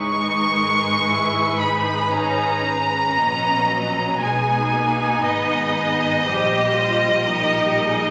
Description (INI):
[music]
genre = classical, slow romantic movement for string orchestra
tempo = 52-61 BPM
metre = 4/4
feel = rubato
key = G# minor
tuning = A4 = 440 Hz
[part]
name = rich studio violin section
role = melody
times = 0.0-8.1 s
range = D#5 to C#6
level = -22 LUFS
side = equal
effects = none
[part]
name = rich studio violin section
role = second line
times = 0.0-8.1 s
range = G4 to D#5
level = -29 LUFS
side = equal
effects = none
[part]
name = clear studio viola section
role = accompaniment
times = 0.0-8.1 s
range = F#3 to G4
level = -26 LUFS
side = equal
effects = none
[part]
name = clear studio cello section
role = bass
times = 0.0-8.1 s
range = G#2 to B2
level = -34 LUFS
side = equal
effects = none
[part]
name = rich studio double bass section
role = bass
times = 0.0-8.1 s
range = G#1 to B1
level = -33 LUFS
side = equal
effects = none
[sound]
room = wet scoring stage reverb, RT60 1.8 s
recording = none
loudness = -20 LUFS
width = mono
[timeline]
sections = 0.0-8.1 A section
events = none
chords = 0.0 G#m; 4.2 G#m/B; 6.3 A#sus4